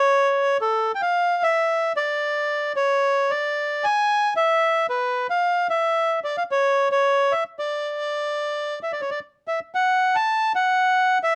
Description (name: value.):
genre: tango.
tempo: 112 BPM.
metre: 4/4.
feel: rubato.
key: D harmonic minor.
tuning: A4 = 441 Hz.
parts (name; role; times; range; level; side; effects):
bandoneon; solo; 0.0-11.4 s; A4 to A5; -22 LUFS; equal; cassette tape.
room: light reverb.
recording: home recording on cassette.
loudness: -22 LUFS.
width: mono.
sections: 0.0-9.7 A section; 9.7-11.4 B section.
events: none.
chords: none.